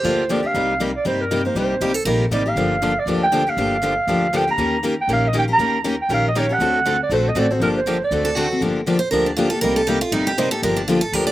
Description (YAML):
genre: acoustic string swing (jazz manouche)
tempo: 238 BPM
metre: 4/4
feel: swing 57% on 8ths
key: G minor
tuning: A4 = 439 Hz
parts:
  - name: growling clarinet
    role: melody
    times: 0.0-8.5 s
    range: Bb4 to Bb5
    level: -20 LUFS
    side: right 2 dB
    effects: slapback echo
  - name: picked steel-string acoustic guitar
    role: second line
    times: 0.0-2.2, 8.2-11.3 s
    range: D4 to D5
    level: -21 LUFS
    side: right 2 dB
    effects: none
  - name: picked steel-string acoustic guitar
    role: accompaniment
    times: 0.0-11.3 s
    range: C3 to Bb4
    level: -22 LUFS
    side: left 3 dB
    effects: none
  - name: picked steel-string acoustic guitar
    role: accompaniment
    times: 0.0-11.3 s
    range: C3 to Bb4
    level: -27 LUFS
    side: right 3 dB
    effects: none
  - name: upright bass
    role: bass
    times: 0.0-11.3 s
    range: G1 to G2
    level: -27 LUFS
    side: equal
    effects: none
room: little or no reverb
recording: recorded outdoors, with no room sound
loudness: -17 LUFS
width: side -14 dB against mid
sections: 0.0-8.6 A section; 8.6-11.3 B section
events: steel-string acoustic guitar solo 8.6-11.3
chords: 0.0 Gm7; 0.5 Cm7; 2.6 Gm7; 4.6 Eb7; 6.6 D7; 7.6 Gm7; 8.1 D7; 8.6 Gm7; 9.6 Cm7; 10.6 Gm7